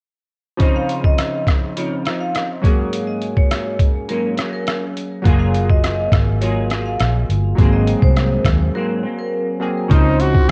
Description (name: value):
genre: indie pop, bedroom pop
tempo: 103 BPM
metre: 4/4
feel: straight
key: unclear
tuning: A4 = 443 Hz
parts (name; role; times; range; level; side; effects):
- chorused retro synth keys; accompaniment; 0.6-10.5 s; F3 to C5; -27 LUFS; equal; cassette tape
- semi-hollow electric guitar; accompaniment; 0.6-10.5 s; Ab2 to Ab4; -26 LUFS; equal; analog chorus, warbly pitch drift, cassette tape
- trip hop sampler-style drum kit; drums; 0.6-10.5 s; hi-hat, kick drum, rim click; -19 LUFS; equal; none
- vibraphone with hard mallets; second line; 0.8-9.5 s; Bb4 to F5; -28 LUFS; equal; lush chorus, cassette tape, tape echo
- vintage muted fingered electric bass; bass; 5.3-10.5 s; Gb1 to Eb2; -20 LUFS; equal; none
- growling trumpet; melody; 9.9-10.5 s; Eb4 to Gb4; -21 LUFS; equal; subtle chorus, cassette tape
room: light reverb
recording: home recording on cassette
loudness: -18 LUFS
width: mono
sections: 0.6-9.9 A section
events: break 8.7-9.9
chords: 0.6 Dbmaj9; 2.6 Ab9sus4; 5.3 Gbmaj9; 7.6 Ab9; 9.9 Dbmaj9